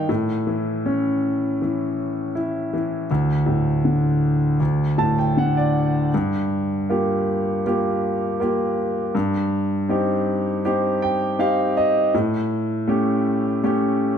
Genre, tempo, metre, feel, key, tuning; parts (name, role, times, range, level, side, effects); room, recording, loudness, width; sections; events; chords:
folk; 80 BPM; 4/4; straight; G minor; A4 = 440 Hz
clear concert grand piano; solo; 0.0-14.2 s; D2 to A5; -19 LUFS; equal
moderate large studio reverb, RT60 1.2 s; close, detailed microphones; -19 LUFS; side -8 dB against mid
0.0-6.1 A section; 6.1-14.2 B section
0.1 A; 3.1 D5; 6.1 Gm7; 9.1 Cm/G; 12.1 A7